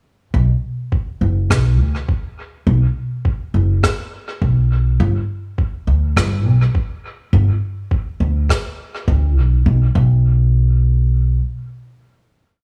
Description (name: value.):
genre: ambient dub.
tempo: 103 BPM.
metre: 4/4.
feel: swing 57% on 16ths.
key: B minor.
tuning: A4 = 440 Hz.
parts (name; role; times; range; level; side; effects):
upright bass; bass; 0.3-11.4 s; F#1 to D2; -17 LUFS; equal; none.
electronic kick drum; drums; 0.3-10.1 s; none; -22 LUFS; equal; none.
rim click; drums; 1.5-8.6 s; none; -26 LUFS; equal; dub echo.
room: little or no reverb.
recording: studio reverb.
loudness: -17 LUFS.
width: mono.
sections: 0.3-9.7 groove; 9.7-12.0 final note.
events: none.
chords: none.